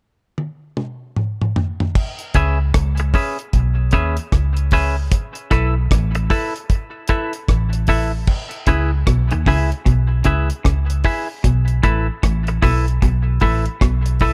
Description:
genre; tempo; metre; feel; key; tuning
roots reggae; 76 BPM; 4/4; swing 62% on 16ths; C# minor; A4 = 440 Hz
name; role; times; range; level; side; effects
deep reggae drum kit; drums; 0.4-14.3 s; crash cymbal, hi-hat, kick drum, rim click, toms; -21 LUFS; equal; none
semi-hollow electric guitar; accompaniment; 2.4-14.3 s; C#4 to E5; -25 LUFS; equal; dub echo
vintage muted fingered electric bass; bass; 2.4-14.3 s; A1 to D#2; -20 LUFS; equal; none
clean electric guitar; riff; 8.7-14.0 s; A2 to D#3; -28 LUFS; equal; none
room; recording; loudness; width
little or no reverb; none; -18 LUFS; mono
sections
0.0-2.0 A section; 2.0-8.3 B section; 8.3-14.3 C section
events
drum fill 0.4-2.0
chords
0.0 N.C.; 2.0 C#m7; 5.1 B7sus4; 8.3 C#m7; 11.4 B7sus4

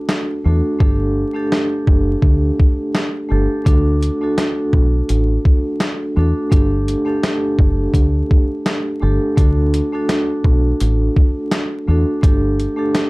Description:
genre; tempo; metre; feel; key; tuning
hip hop, boom-bap hip-hop; 84 BPM; 4/4; swing 56% on 16ths; D major; A4 = 439 Hz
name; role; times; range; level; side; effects
vibraphone with medium mallets; accompaniment; 0.0-13.1 s; A3 to A4; -19 LUFS; equal; cassette tape
boom bap sampler-style drum kit; drums; 0.1-13.1 s; hi-hat, kick drum, snare drum; -15 LUFS; equal; none
deep dub fingered electric bass; bass; 0.5-12.7 s; F#1 to E2; -16 LUFS; equal; none
room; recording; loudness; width
little or no reverb; dark, warm production, vinyl crackle; -14 LUFS; side -23 dB against mid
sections
0.0-13.1 A section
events
hi-hats muted 0.8-3.7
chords
0.0 D; 0.8 Gsus2; 3.7 D; 6.5 Gsus2; 9.4 D; 12.2 Gsus2

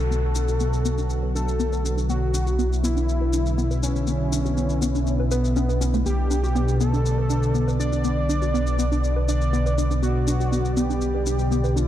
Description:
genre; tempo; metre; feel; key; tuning
melodic techno; 121 BPM; 4/4; straight; B minor; A4 = 443 Hz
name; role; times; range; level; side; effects
fat analog lead; melody; 0.0-11.9 s; B3 to D5; -28 LUFS; equal; digital delay
lush unison pad; sustained chords; 0.0-11.9 s; B2 to D5; -28 LUFS; right 1 dB; chorus, vintage 12-bit sampler grit
warbly dusty pluck; arpeggios; 0.0-11.8 s; A3 to B4; -29 LUFS; left 1 dB; chorus, ping-pong delay
dark detuned saw bass; bass; 0.0-11.9 s; B1; -23 LUFS; equal; none
analog drone; drone; 0.3-11.9 s; B2 to D3; -31 LUFS; equal; none
downlifter; sound effects; 0.0-2.1 s; none; -45 LUFS; equal; none
maracas; percussion; 0.1-11.9 s; none; -36 LUFS; left 4 dB; none
room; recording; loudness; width
light reverb, digital ambience; dark, warm production; -20 LUFS; side -12 dB against mid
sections
0.0-11.9 A section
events
filter sweep on synth arpeggio sound 0.0-11.9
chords
0.0 Bm

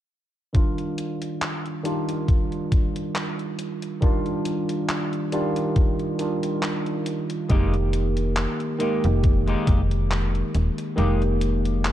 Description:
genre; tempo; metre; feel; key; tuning
vaporwave; 69 BPM; 4/4; swing 55% on 16ths; Eb major; A4 = 441 Hz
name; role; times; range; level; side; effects
barky tine electric piano; accompaniment; 0.5-11.9 s; Eb3 to G4; -25 LUFS; right 1 dB; lush chorus, analog delay
detuned 8-bit digital drum machine; drums; 0.5-11.9 s; handclaps, hi-hat; -32 LUFS; equal; none
electronic kick drum; drums; 0.5-9.9 s; none; -21 LUFS; equal; none
clean electric guitar; riff; 7.5-11.9 s; Ab3 to G4; -32 LUFS; left 3 dB; lush chorus, analog delay
slap-like FM bass; bass; 7.5-11.9 s; Eb1 to F1; -22 LUFS; equal; none
room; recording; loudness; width
little or no reverb; dark, warm production; -21 LUFS; side -12 dB against mid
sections
0.5-11.9 A section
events
kick drops out 11.0-11.9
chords
0.5 Ebmaj9; 7.5 Fm11

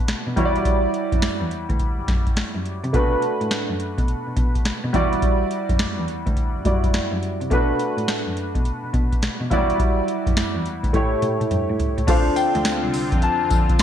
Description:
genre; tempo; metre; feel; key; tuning
R&B, new jack swing; 105 BPM; 4/4; swing 65% on 16ths; unclear; A4 = 437 Hz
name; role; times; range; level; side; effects
warm concert grand piano; accompaniment; 0.0-13.8 s; F#3 to F5; -23 LUFS; right 1 dB; analog chorus
warm cello; bass; 0.1-13.8 s; C2 to C3; -28 LUFS; equal; none
booming analog drum machine; drums; 0.1-13.8 s; crash cymbal, hi-hat, kick drum, snare drum, tambourine, toms; -22 LUFS; equal; vintage 12-bit sampler grit, gated reverb
brassy analog pad; sustained chords; 12.1-13.8 s; D3 to F4; -27 LUFS; left 1 dB; chorus
warm concert grand piano; melody; 12.4-13.8 s; G5 to A5; -23 LUFS; left 5 dB; none
room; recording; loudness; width
light reverb; bright 1980s-style digital production; -19 LUFS; side -9 dB against mid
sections
0.0-12.1 A section; 12.1-13.8 B section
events
drum fill 10.9-12.1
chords
0.4 Em9; 2.9 Bm7; 4.9 Em9; 7.5 Bm7; 9.5 Em9; 10.9 A7; 12.1 Dm7

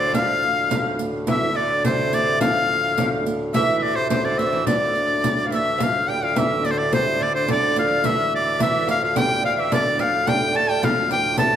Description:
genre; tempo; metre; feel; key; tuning
medieval dance; 107 BPM; 2/4; straight; D minor; A4 = 440 Hz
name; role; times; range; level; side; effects
bright shawm; melody; 0.0-11.6 s; C5 to A5; -21 LUFS; left 1 dB; none
alto recorder; second line; 0.0-11.4 s; C5 to A5; -27 LUFS; left 3 dB; none
lute; second line; 0.0-11.6 s; C3 to A3; -27 LUFS; right 5 dB; none
hand-pumped harmonium; drone; 0.0-11.6 s; D2 to A2; -28 LUFS; equal; none
frame drum; percussion; 0.1-11.6 s; none; -27 LUFS; left 2 dB; none
riq; percussion; 0.1-11.6 s; none; -30 LUFS; right 5 dB; none
room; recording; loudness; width
wet recital hall reverb, RT60 1.6 s; none; -18 LUFS; side -9 dB against mid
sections
0.0-5.8 A section; 5.8-11.6 B section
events
none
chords
none

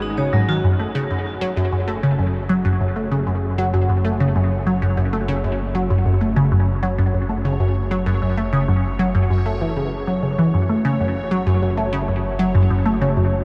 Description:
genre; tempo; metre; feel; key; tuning
ambient, sequencer-driven space music; 97 BPM; 4/4; straight; F# minor; A4 = 441 Hz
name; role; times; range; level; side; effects
vibraphone with hard mallets; arpeggios; 0.0-0.6 s; F#3 to C#5; -31 LUFS; equal; tape echo
analog drone; bass; 0.0-13.4 s; F#1 to G#1; -29 LUFS; equal; chorus
bubbling stepped-filter texture; texture; 0.0-13.4 s; C#5 to G#5; -37 LUFS; equal; chorus, built-in reverb
resonant blip pluck; riff; 0.2-13.3 s; F#2 to A3; -20 LUFS; equal; phaser, analog chorus, tape echo
room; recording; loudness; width
moderate huge ambient reverb, RT60 9.4 s; dark, warm production; -20 LUFS; mono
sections
0.6-13.4 A section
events
fade-in on synth texture 0.6-13.4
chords
0.0 G#7(no3); 0.6 F#5

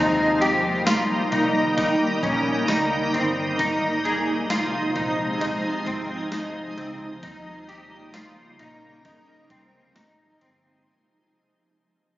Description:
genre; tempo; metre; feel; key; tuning
dream pop; 66 BPM; 4/4; straight; Ab major; A4 = 439 Hz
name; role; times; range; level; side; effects
shimmering ambient pad; sustained chords; 0.0-10.8 s; C3 to Eb4; -25 LUFS; right 1 dB; chorus, built-in reverb
semi-hollow electric guitar; arpeggios; 0.0-10.9 s; C4 to Ab4; -24 LUFS; left 1 dB; ensemble chorus, digital delay
vintage muted fingered electric bass; bass; 0.0-10.8 s; G1 to Eb2; -35 LUFS; equal; none
gated 80s digital drum machine; drums; 0.4-10.6 s; kick drum, ride cymbal, snare drum, tambourine; -29 LUFS; equal; gated reverb, gated reverb snare
room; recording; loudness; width
moderate lush hall reverb, RT60 2.6 s; recorded on a phone in the room, studio reverb, compression, nothing above 7.5 kHz; -21 LUFS; side -15 dB against mid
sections
0.0-10.9 A section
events
fade-out 0.0-10.9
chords
0.0 Eb7; 3.6 Ab6; 7.2 Eb7; 9.0 Ab6

